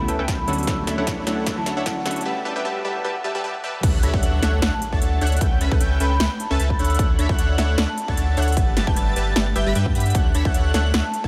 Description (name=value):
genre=future bass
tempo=152 BPM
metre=4/4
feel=swing 54% on 16ths, half-time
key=D major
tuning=A4 = 441 Hz
part: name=glassy digital keys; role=accompaniment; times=0.0-2.2 s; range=C#3 to F#4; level=-34 LUFS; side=equal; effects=chorus, sidechain pumping, delay
part: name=ethereal airy pad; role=sustained chords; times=0.0-2.2 s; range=C#3 to G4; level=-37 LUFS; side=equal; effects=none
part: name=saturated sub bass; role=bass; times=0.0-11.3 s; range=G1 to G2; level=-24 LUFS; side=equal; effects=sidechain pumping
part: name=vibraphone with soft mallets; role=melody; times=0.1-2.2, 4.7-11.3 s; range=E5 to E6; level=-33 LUFS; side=equal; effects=sidechain pumping, delay
part: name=supersaw stab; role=riff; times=0.1-11.3 s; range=G3 to B5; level=-28 LUFS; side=equal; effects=sidechain pumping, low-pass filter, delay
part: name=big-room dance drum kit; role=drums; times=0.1-11.2 s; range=crash cymbal, hi-hat, snare drum, toms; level=-30 LUFS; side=equal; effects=high-pass filter on snare, high-pass filter on hats, high-pass filter on toms, high-pass filter on cymbals, high-pass filter on room
part: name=electronic kick drum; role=drums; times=0.3-11.3 s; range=none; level=-24 LUFS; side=equal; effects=none
part: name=airy dreamy lead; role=arpeggios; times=3.8-11.3 s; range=F#6 to B6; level=-34 LUFS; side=equal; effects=chorus, sidechain pumping
part: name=impact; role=sound effects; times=3.8-5.4 s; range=none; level=-33 LUFS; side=equal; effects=none
room=moderate huge ambient reverb, RT60 8.1 s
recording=dreamy mix soaked in reverb, high-pass filter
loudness=-21 LUFS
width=mono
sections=0.0-3.8 A section; 3.8-11.3 B section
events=build-up 0.0-3.8; drum fill 0.0-2.3, 3.5; filter sweep 0.0-3.8; drop 3.8-11.3; impact 3.8-5.4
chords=0.5 Dmaj7; 2.3 G69; 3.8 Dmaj7; 5.4 A7/C#; 6.8 Dmaj7; 8.6 G69; 10.2 Dmaj7